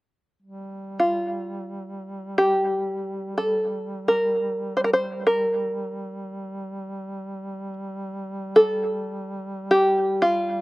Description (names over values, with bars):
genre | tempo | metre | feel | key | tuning
caucasian folk, Caucasian lament | free time | none | none | G minor | A4 = 436 Hz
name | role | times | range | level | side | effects
warm duduk | drone | 0.4-10.6 s | G3 | -34 LUFS | right 1 dB | stereo widening
open-back banjo | melody | 1.0-10.6 s | F4 to C5 | -20 LUFS | equal | slapback echo
room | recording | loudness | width
little or no reverb | recorded outdoors, with no room sound | -21 LUFS | side -20 dB against mid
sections
0.4-10.6 A section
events
none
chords
none